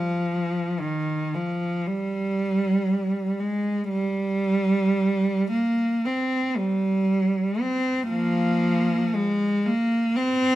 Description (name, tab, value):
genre	classical, free, expressive piece for unaccompanied cello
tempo	55-61 BPM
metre	4/4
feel	rubato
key	unclear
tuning	A4 = 437 Hz
part	rich cello	solo	0.0-10.6 s	Eb3 to C4	-22 LUFS	right 1 dB	none
room	moderate large studio reverb, RT60 1.3 s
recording	none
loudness	-22 LUFS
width	side -14 dB against mid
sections	0.0-10.6 A section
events	none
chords	none